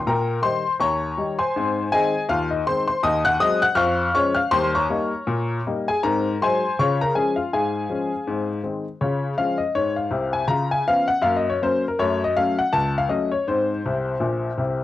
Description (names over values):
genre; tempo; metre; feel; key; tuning
jazz, stride piano; 161 BPM; 4/4; swing 58% on 8ths; Ab major, Db major from 3.0 s; A4 = 440 Hz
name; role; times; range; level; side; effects
clear upright piano; solo; 0.0-14.8 s; Bb1 to Gb6; -20 LUFS; left 2 dB; cassette tape
room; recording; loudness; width
moderate studio reverb, RT60 0.5 s; home recording on cassette; -20 LUFS; side -14 dB against mid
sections
0.0-9.0 A section; 9.0-14.8 B section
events
upright piano fill 13.9-14.8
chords
0.0 Eb7/Bb; 1.5 Ab; 3.0 Ab7/Eb; 3.8 Db/F; 4.5 Eb7; 6.0 Ab7; 6.8 Db; 7.5 Db/Ab; 8.3 Ab; 9.0 Db; 10.5 Db7; 11.2 Gb; 12.0 Gbm; 13.5 Ab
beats
| 0.04 0.41 0.78 1.16 | 1.53 1.91 2.28 2.65 | 3.03 3.40 3.78 4.15 | 4.52 4.90 5.27 5.64 | 6.02 6.39 6.76 7.14 | 7.51 7.88 8.26 8.63 | 9.00 9.38 9.75 10.12 | 10.50 10.87 11.24 11.62 | 11.99 12.36 12.73 13.11 | 13.48 13.85 14.22 14.60